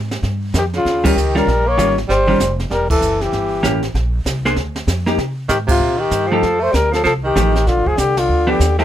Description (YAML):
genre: jazz, small-group swing and bop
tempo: 194 BPM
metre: 4/4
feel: swing 62% on 8ths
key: unclear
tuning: A4 = 445 Hz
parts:
  - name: upright bass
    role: bass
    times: 0.0-8.8 s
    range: E1 to C3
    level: -20 LUFS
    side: equal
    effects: none
  - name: jazz brush drum kit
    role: drums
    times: 0.1-8.8 s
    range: brushed snare drum, crash cymbal, hi-hat, kick drum, ride cymbal, snare drum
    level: -23 LUFS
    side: right 1 dB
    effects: none
  - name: breathy tenor saxophone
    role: second line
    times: 0.5-8.8 s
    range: C3 to Bb3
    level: -22 LUFS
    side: right 4 dB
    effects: none
  - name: breathy flugelhorn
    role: melody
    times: 0.6-8.8 s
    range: F4 to Db5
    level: -18 LUFS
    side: left 3 dB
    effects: none
  - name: vintage hollow-body jazz guitar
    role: accompaniment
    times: 1.0-8.8 s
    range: Eb3 to C5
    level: -18 LUFS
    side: equal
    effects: none
room: light reverb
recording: close, detailed microphones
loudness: -14 LUFS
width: side -11 dB against mid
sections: 0.0-8.8 A section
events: band accent 1.0, 2.9, 5.7, 8.1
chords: 0.2 Eb9; 2.7 Edim7; 3.9 Bbadd9; 5.2 Cm7; 6.4 F9; 7.7 Bbsus2; 8.3 G7